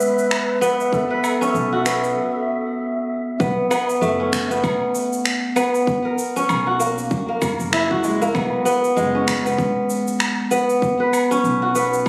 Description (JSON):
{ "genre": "organic downtempo", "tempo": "97 BPM", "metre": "4/4", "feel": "swing 58% on 16ths", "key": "unclear", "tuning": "A4 = 440 Hz", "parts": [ { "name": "breathy reedy low ney", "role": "melody", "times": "0.0-2.8 s", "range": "A4 to B4", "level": "-27 LUFS", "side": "equal", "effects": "digital delay" }, { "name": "kora", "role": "arpeggios", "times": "0.0-12.1 s", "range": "G#3 to B4", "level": "-22 LUFS", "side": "equal", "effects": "digital delay" }, { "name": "electronic shaker, finger snaps and woodblock", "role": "drums", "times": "0.0-12.1 s", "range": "none", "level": "-28 LUFS", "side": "equal", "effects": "overdrive" }, { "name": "wind-like tuned noise texture", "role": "texture", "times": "0.0-2.2 s", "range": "E5", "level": "-32 LUFS", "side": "equal", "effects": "built-in reverb" }, { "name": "electronic kick drum", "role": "drums", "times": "0.9-12.1 s", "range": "none", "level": "-26 LUFS", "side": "equal", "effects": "none" }, { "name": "upright bass", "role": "bass", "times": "1.5-12.0 s", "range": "F#1 to B1", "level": "-30 LUFS", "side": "equal", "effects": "sidechain pumping" } ], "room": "moderate scoring stage reverb, RT60 1.8 s, studio ambience", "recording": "recorded on a phone in the room, studio reverb, compression", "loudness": "-20 LUFS", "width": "mono", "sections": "0.0-3.4 A section; 3.4-12.1 A section", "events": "filter sweep on kora 0.0-3.4; break 2.2-3.4", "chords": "0.0 E; 0.9 B9sus4; 3.4 Bsus2; 5.9 F#9/B; 8.3 F#sus24; 10.8 Dmaj7/B (rootless)" }